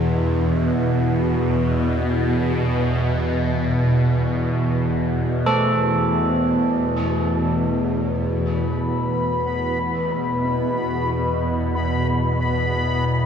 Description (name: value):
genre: dark ambient drone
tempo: free time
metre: none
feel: none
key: unclear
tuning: A4 = 439 Hz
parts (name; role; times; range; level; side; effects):
- carillon bells; arpeggios; 0.0-11.4 s; B3 to A4; -27 LUFS; right 2 dB; tape echo
- bowed-like drone; drone; 0.0-13.3 s; E2 to B2; -20 LUFS; equal; built-in reverb, phaser
- bubbling stepped-filter texture; texture; 8.5-13.3 s; B3 to B5; -23 LUFS; left 2 dB; chorus, built-in reverb
room: wet cathedral reverb, RT60 5.2 s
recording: none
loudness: -18 LUFS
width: side -7 dB against mid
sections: 0.0-8.5 A section; 8.5-13.3 B section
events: none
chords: 0.0 E5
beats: free time